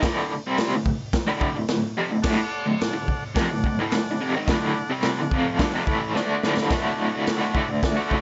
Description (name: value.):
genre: garage rock duo or trio.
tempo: 108 BPM.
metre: 4/4.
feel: straight.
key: D mixolydian.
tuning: A4 = 437 Hz.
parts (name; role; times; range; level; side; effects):
raw garage guitar; riff; 0.0-8.2 s; D2 to F#4; -26 LUFS; equal; overdrive, tremolo.
raw garage drum kit; drums; 0.0-8.2 s; crash cymbal, hi-hat, kick drum, snare drum; -28 LUFS; equal; none.
overdriven combo organ; sustained chords; 2.2-8.2 s; A4 to F#5; -35 LUFS; equal; none.
room: light reverb.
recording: nothing above 7.8 kHz.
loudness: -24 LUFS.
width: mono.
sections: 0.0-6.7 A section; 6.7-8.2 B section.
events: drum fill 6.2-6.7.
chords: 0.0 D.